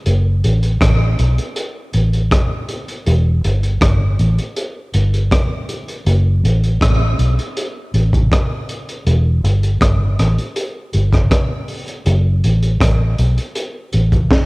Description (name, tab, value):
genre	dub reggae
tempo	80 BPM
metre	4/4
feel	straight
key	unclear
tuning	A4 = 440 Hz
part	vintage muted fingered electric bass	bass	0.1-14.3 s	E1 to B1	-14 LUFS	equal	none
part	crunchy breakbeat drum kit	drums	0.1-14.5 s	hi-hat, kick drum, rim click, snare drum	-18 LUFS	equal	cassette tape
room	little or no reverb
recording	home recording on cassette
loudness	-14 LUFS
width	side -25 dB against mid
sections	0.0-14.5 A section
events	none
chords	none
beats	| 0.06 0.81 1.56 2.31 | 3.06 3.81 4.56 5.31 | 6.06 6.81 7.56 8.31 | 9.06 9.81 10.56 11.31 | 12.06 12.81 13.56 14.31